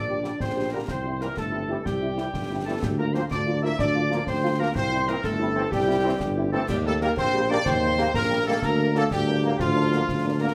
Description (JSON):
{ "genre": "military-style march for wind band", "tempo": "124 BPM (dotted quarters)", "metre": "6/8", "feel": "straight", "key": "Bb major from 6.7 s", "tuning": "A4 = 439 Hz", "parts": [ { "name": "warm trumpet section", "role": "melody", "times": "0.0-10.5 s", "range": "F4 to E5", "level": "-33 LUFS", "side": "equal", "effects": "none" }, { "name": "piccolo", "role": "second line", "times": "0.0-10.5 s", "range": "F5 to E6", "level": "-36 LUFS", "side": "equal", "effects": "none" }, { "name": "warm euphonium", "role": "second line", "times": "0.0-10.5 s", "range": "F3 to E4", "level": "-32 LUFS", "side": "equal", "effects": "none" }, { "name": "warm woodwind section", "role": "second line", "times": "0.0-10.5 s", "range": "F4 to E5", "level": "-35 LUFS", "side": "equal", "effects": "none" }, { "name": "mellow tuba", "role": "bass", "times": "0.0-10.5 s", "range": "G1 to Eb2", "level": "-29 LUFS", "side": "equal", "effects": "none" }, { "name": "mellow French horn section", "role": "accompaniment", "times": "0.1-10.5 s", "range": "F3 to G4", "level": "-35 LUFS", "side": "equal", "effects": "none" }, { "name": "warm trombone section", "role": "sustained chords", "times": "0.2-10.5 s", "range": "D3 to C4", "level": "-34 LUFS", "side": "equal", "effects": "none" }, { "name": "concert snare drum, concert bass drum and clash cymbals", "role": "drums", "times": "0.2-10.5 s", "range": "none", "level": "-36 LUFS", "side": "equal", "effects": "none" } ], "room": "wet large studio reverb, RT60 0.9 s", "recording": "none", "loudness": "-24 LUFS", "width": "mono", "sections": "0.0-10.5 A section", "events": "none", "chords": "0.0 Gm/Bb; 0.9 C; 2.8 Bb/D; 4.8 C; 6.7 Eb; 8.6 Bb/D" }